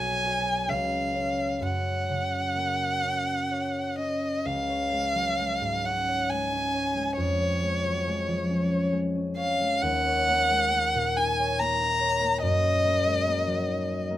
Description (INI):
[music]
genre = classical, romantic duo for violin and harp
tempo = 62-73 BPM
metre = 3/4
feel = rubato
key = F# major, Db major from 4.5 s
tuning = A4 = 440 Hz
[part]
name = dark violin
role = melody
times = 0.0-14.1 s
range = Db5 to Bb5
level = -26 LUFS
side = equal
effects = none
[part]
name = concert harp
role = accompaniment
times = 0.0-14.2 s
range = B1 to Eb5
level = -28 LUFS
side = left 1 dB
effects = none
[sound]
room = light reverb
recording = close, detailed microphones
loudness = -24 LUFS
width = side -13 dB against mid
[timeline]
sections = 0.0-4.5 A section; 4.5-14.2 B section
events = none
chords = 0.0 G#m7b5/B; 0.7 C#7; 1.6 F#; 4.5 Db; 7.2 Db/F; 9.8 Ebm7; 12.4 Ebm/Gb